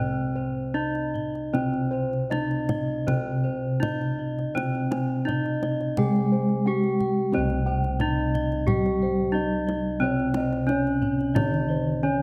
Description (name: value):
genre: Javanese gamelan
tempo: 76-90 BPM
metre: 4/4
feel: straight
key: C pelog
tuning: A4 = 439 Hz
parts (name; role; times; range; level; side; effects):
- gamelan-type bronze metallophone; melody; 0.0-12.2 s; C4 to Ab4-20c; -30 LUFS; equal; none
- gamelan-type bossed gongs; arpeggios; 0.0-12.2 s; C5 to Ab5-20c; -37 LUFS; equal; none
- gamelan-type bronze metallophone; arpeggios; 0.0-12.2 s; C5 to Ab5-20c; -38 LUFS; equal; none
- gamelan-type bossed gongs; bass; 0.0-12.2 s; C2 to Db4+20c; -32 LUFS; equal; none
- kendang; percussion; 0.9-11.6 s; none; -34 LUFS; equal; none
- gamelan-type bronze metallophone; accompaniment; 1.5-12.2 s; C3 to Ab3-20c; -30 LUFS; equal; none
room: moderate scoring stage reverb, RT60 2.0 s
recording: none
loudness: -25 LUFS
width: mono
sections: 0.0-7.3 A section; 7.3-12.2 B section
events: none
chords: none